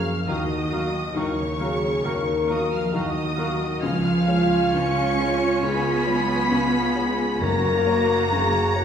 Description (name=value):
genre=cinematic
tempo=68 BPM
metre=4/4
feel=rubato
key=unclear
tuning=A4 = 439 Hz
part: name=muted symphonic violin section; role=melody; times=0.0-8.8 s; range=C#6 to C#7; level=-31 LUFS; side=left 1 dB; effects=none
part: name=muted symphonic violin section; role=second line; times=0.0-8.8 s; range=C#5 to C#6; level=-30 LUFS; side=left 1 dB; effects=none
part: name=felt-muted upright piano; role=accompaniment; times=0.0-8.8 s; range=F#1 to E#5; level=-28 LUFS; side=left 2 dB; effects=none
part: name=dark French horn section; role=sustained chords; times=0.0-8.8 s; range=F#3 to A#4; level=-26 LUFS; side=left 2 dB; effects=none
part: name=muted symphonic cello section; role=bass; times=0.0-8.8 s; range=C#3 to C#4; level=-26 LUFS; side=right 1 dB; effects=none
part: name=muted symphonic double bass section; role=bass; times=0.0-8.8 s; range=F#1 to F#2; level=-31 LUFS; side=right 4 dB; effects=none
part: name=clear oboe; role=second line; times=0.3-8.8 s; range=C#5 to E#5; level=-34 LUFS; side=right 1 dB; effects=none
part: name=silver concert flute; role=second line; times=0.3-8.8 s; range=G#5 to A#5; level=-34 LUFS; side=equal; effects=none
part: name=warm clarinet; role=second line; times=0.3-8.8 s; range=E#4 to F#4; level=-33 LUFS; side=equal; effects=none
part: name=muted symphonic viola section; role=accompaniment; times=0.3-8.8 s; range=F#3 to E#5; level=-33 LUFS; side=right 4 dB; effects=none
part: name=timpani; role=percussion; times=7.4-8.7 s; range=F#2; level=-32 LUFS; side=right 1 dB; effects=none
room=wet recital hall reverb, RT60 1.2 s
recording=heard from further back in the room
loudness=-20 LUFS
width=side -8 dB against mid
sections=0.0-8.8 A section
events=none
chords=0.3 D#madd9; 3.8 C#7; 7.4 F#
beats=| 0.28 1.17 2.05 2.94 | 3.83 4.75 5.63 6.52 | 7.41 8.31